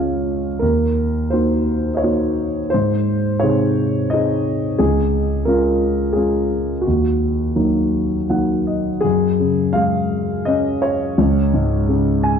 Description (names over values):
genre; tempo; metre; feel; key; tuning
classical, lyrical solo piano; 78-90 BPM; 3/4; rubato; Eb dorian; A4 = 440 Hz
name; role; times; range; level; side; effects
dark grand piano; solo; 0.0-12.4 s; Db2 to G#5; -16 LUFS; equal; none
room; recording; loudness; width
moderate scoring stage reverb, RT60 1.6 s; dark, warm production; -16 LUFS; side -7 dB against mid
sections
0.0-9.0 A section; 9.0-12.4 B section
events
grand piano fill 7.9-9.0, 11.9-12.4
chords
0.0 Db; 0.6 Ebm; 2.7 Ab; 4.8 Db; 6.9 Ebm; 9.0 F#sus2; 11.2 C#5